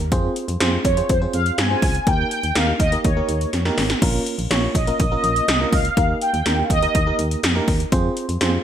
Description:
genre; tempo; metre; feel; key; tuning
synth-pop; 123 BPM; 4/4; straight; unclear; A4 = 440 Hz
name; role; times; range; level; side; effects
solid FM bass; bass; 0.0-8.6 s; Ab1 to G2; -23 LUFS; equal; none
80s electronic pad drums; drums; 0.0-8.5 s; crash cymbal, hi-hat, kick drum, snare drum; -21 LUFS; equal; gated reverb
FM electric piano with tremolo; accompaniment; 0.1-8.6 s; Bb3 to Db5; -25 LUFS; right 2 dB; none
mellow synth brass; melody; 0.8-7.2 s; C5 to Ab5; -22 LUFS; equal; chorus, phaser, digital delay
room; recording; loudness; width
moderate plate reverb, RT60 2.0 s; bright 1980s-style digital production; -17 LUFS; side -9 dB against mid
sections
0.0-8.6 A section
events
drum fill 3.5-4.0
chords
0.1 Fm; 2.1 Eb; 4.0 Bbm; 6.0 Eb; 7.9 Fm

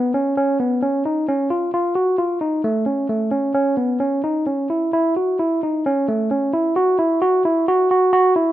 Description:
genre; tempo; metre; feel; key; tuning
contemporary instrumental, contemporary; 132 BPM; 7/4; straight; F# dorian; A4 = 440 Hz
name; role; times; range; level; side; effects
barky tine electric piano; solo; 0.0-8.5 s; A3 to F#4; -17 LUFS; equal; none
room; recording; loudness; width
light reverb; close, detailed microphones; -17 LUFS; side -13 dB against mid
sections
0.0-5.9 A section; 5.9-8.5 B section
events
none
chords
none

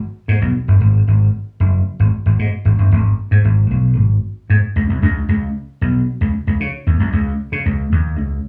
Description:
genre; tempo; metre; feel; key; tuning
funk; 114 BPM; 4/4; straight; G# minor; A4 = 440 Hz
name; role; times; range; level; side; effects
vintage slap bass; solo; 0.3-8.4 s; F#1 to C#3; -16 LUFS; equal; none
room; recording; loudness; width
wet studio ambience, RT60 0.5 s; band playing live in one room, small room ambience; -16 LUFS; mono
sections
0.8-8.5 A section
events
none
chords
none

